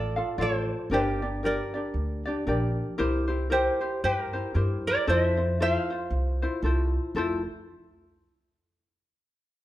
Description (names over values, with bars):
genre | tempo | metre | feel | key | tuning
Hawaiian | 115 BPM | 4/4 | swing 58% on 8ths | F major | A4 = 439 Hz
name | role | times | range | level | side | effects
tenor ukulele | melody | 0.0-6.6 s | G4 to F5 | -28 LUFS | right 1 dB | none
ukulele | accompaniment | 0.0-7.4 s | D4 to F5 | -30 LUFS | left 2 dB | none
upright bass | bass | 0.0-7.4 s | F1 to G2 | -29 LUFS | equal | none
room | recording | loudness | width
wet large studio reverb, RT60 1.3 s | band playing live in one room | -24 LUFS | side -14 dB against mid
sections
0.0-7.2 A section; 7.2-9.2 B section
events
none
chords
0.0 Dm; 0.9 Gm; 3.0 C7; 5.1 Fmaj7